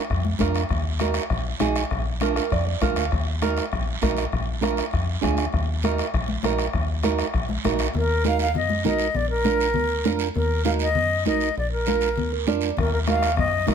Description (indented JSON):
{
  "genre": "latin, cumbia",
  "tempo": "199 BPM",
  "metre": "4/4",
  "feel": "straight",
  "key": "Eb harmonic minor",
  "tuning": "A4 = 441 Hz",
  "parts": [
    { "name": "metallic FM bass", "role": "bass", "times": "0.1-13.7 s", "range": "Bb1 to Gb2", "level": "-26 LUFS", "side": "left 1 dB", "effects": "none" },
    { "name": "bombo", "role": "percussion", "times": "0.1-8.0, 12.8-13.7 s", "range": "none", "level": "-27 LUFS", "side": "left 3 dB", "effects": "none" },
    { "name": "guiro", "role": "percussion", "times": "0.1-13.7 s", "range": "none", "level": "-34 LUFS", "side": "right 6 dB", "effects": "none" },
    { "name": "congas", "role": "percussion", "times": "0.2-13.7 s", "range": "none", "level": "-30 LUFS", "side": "left 3 dB", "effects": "none" },
    { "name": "nylon-string guitar", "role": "accompaniment", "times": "0.4-13.7 s", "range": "D4 to F5", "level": "-25 LUFS", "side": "right 10 dB", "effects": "none" },
    { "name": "silver concert flute", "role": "melody", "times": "8.0-13.7 s", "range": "Bb4 to F5", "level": "-24 LUFS", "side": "left 1 dB", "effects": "plate reverb" }
  ],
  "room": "light reverb",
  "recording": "none",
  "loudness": "-21 LUFS",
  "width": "side -7 dB against mid",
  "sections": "0.0-7.9 A section; 7.9-13.7 B section",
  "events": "nylon-string guitar fill 2.2-3.1, 12.2-12.8",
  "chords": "0.0 Bb; 0.7 Ebm; 1.9 Bb; 3.1 Ebm; 4.3 Bb7; 5.5 Ebm; 9.2 Bb; 10.4 Ebm; 11.6 Bb; 12.8 Ebm",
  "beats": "0.10 0.40 | 0.70 1.00 1.30 1.61 | 1.91 2.21 2.51 2.81 | 3.12 3.42 3.72 4.02 | 4.33 4.63 4.93 5.23 | 5.53 5.83 6.14 6.44 | 6.74 7.04 7.34 7.65 | 7.95 8.25 8.55 8.85 | 9.15 9.46 9.76 10.06 | 10.36 10.66 10.96 11.27 | 11.57 11.87 12.17 12.47 | 12.77 13.07 13.38 13.68"
}